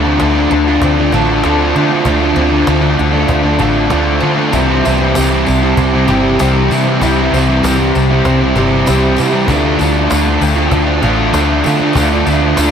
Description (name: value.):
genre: rock, shoegaze and dream pop.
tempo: 97 BPM.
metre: 4/4.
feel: straight.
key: D minor.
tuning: A4 = 440 Hz.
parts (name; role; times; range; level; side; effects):
picked twelve-string acoustic guitar; arpeggios; 0.0-12.7 s; E3 to A4; -20 LUFS; right 3 dB; analog chorus, diffuse ambient delay.
distorted electric guitar; riff; 0.0-12.7 s; C3 to D4; -20 LUFS; equal; distortion.
overdriven semi-hollow guitar; riff; 0.0-12.7 s; C3 to F4; -16 LUFS; right 6 dB; reverse reverb.
thick fuzz guitar; riff; 0.0-12.7 s; C3 to D4; -15 LUFS; left 7 dB; distortion, analog chorus.
vintage muted fingered electric bass; bass; 0.0-12.7 s; G1 to D3; -16 LUFS; equal; none.
cajon; drums; 0.2-12.7 s; none; -20 LUFS; equal; none.
tambourine; percussion; 4.5-12.7 s; none; -29 LUFS; left 4 dB; none.
room: wet lush hall reverb, RT60 2.5 s.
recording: dreamy mix soaked in reverb.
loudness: -10 LUFS.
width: side -8 dB against mid.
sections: 0.0-12.7 A section.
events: none.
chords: 0.0 Dm7; 4.5 Cadd9; 9.5 Dm7.